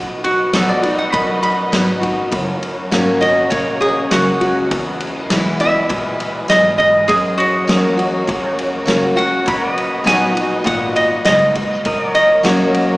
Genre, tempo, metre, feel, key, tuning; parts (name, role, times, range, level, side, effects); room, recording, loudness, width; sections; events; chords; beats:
honky-tonk and classic country; 101 BPM; 4/4; straight; B major; A4 = 439 Hz
picked steel-string acoustic guitar; accompaniment; 0.0-13.0 s; E2 to F#4; -19 LUFS; left 1 dB
warm studio violin section; sustained chords; 0.0-13.0 s; G#3 to D#5; -24 LUFS; equal
upright bass; bass; 0.0-13.0 s; F#1 to B2; -30 LUFS; equal
lap resonator guitar; melody; 0.2-13.0 s; F#4 to B5; -16 LUFS; equal
natural country drum kit; drums; 0.2-12.9 s; kick drum, ride cymbal, snare drum; -21 LUFS; equal
pedal steel guitar; sustained chords; 9.5-13.0 s; A#4 to D#5; -25 LUFS; equal
wet cathedral reverb, RT60 4.7 s; recorded in a church or concert hall, small speaker sound; -13 LUFS; side -20 dB against mid
0.0-13.0 A section
resonator guitar played with a steel bar solo 0.0-13.0
0.0 B; 2.3 F#; 4.7 E; 7.1 F#; 9.5 B; 11.9 F#
0.54 1.14 1.73 | 2.33 2.92 3.52 4.11 | 4.71 5.30 5.90 6.49 | 7.09 7.68 8.28 8.88 | 9.47 10.06 10.66 11.26 | 11.85 12.45